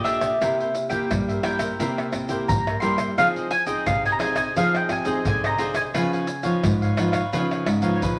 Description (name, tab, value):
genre	samba and choro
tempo	87 BPM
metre	4/4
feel	straight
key	unclear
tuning	A4 = 440 Hz
part	mandolin	melody	0.0-8.2 s	Cb5 to C6	-26 LUFS	equal	none
part	cavaquinho	accompaniment	0.0-8.2 s	D4 to F5	-33 LUFS	equal	none
part	nylon-string guitar	accompaniment	0.0-8.2 s	G2 to Ab4	-29 LUFS	equal	none
part	nylon-string guitar	bass	0.0-8.2 s	Ab2 to C4	-31 LUFS	equal	none
part	pandeiro, tube shaker, surdo and tamborim	percussion	0.1-8.2 s	none	-30 LUFS	equal	none
room	wet studio reverb, RT60 0.8 s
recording	vinyl crackle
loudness	-23 LUFS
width	mono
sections	0.0-8.2 A section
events	none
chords	0.4 C7; 3.2 Fm7; 5.9 Db9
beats	| 0.41 1.10 1.80 2.49 | 3.18 3.87 4.57 5.26 | 5.95 6.64 7.33 8.02